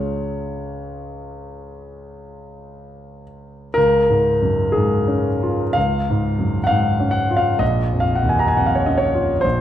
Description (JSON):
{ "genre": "classical, romantic nocturne for solo piano", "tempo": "55-68 BPM", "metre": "4/4", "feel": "rubato", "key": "Db major", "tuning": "A4 = 445 Hz", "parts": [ { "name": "warm concert grand piano", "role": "solo", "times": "0.0-9.6 s", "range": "Bb1 to Bb5", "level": "-18 LUFS", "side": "equal", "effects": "none" } ], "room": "moderate recital hall reverb, RT60 1.4 s", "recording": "dark, warm production", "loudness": "-16 LUFS", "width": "side -11 dB against mid", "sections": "0.0-3.8 A section; 3.8-9.6 A section", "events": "none", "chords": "0.0 Db; 7.6 Bbm", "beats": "0.63 1.68 2.73 | 3.77 4.74 5.76 6.70 | 7.61 8.55 9.44" }